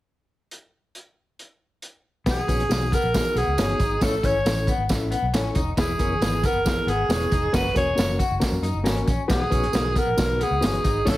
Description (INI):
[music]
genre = uptempo 1960s-style soul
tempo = 136 BPM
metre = 4/4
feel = straight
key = B major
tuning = A4 = 440 Hz
[part]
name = crunchy breakbeat drum kit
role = drums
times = 0.5-11.2 s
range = hi-hat, kick drum, snare drum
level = -25 LUFS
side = equal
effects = none
[part]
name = raspy alto saxophone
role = melody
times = 2.3-11.2 s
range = G#4 to C#5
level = -25 LUFS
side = right 1 dB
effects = none
[part]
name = reed electric piano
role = accompaniment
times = 2.3-11.2 s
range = A2 to E5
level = -29 LUFS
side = left 2 dB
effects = overdrive, fast tremolo
[part]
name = electric guitar through a small old amp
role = riff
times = 2.3-11.2 s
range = A3 to G#4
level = -30 LUFS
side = left 5 dB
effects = spring reverb
[part]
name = vintage muted fingered electric bass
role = bass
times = 2.3-11.2 s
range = E1 to F#2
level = -27 LUFS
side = equal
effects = none
[part]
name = tambourine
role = percussion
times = 2.3-11.2 s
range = none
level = -37 LUFS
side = right 6 dB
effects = none
[sound]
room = moderate large studio reverb, RT60 0.9 s, small room ambience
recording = heavily compressed radio sound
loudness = -20 LUFS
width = side -16 dB against mid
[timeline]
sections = 0.5-2.3 A section; 2.3-11.2 B section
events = none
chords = 0.5 N.C.; 2.3 B; 4.0 A; 5.8 E; 7.5 F#; 9.3 B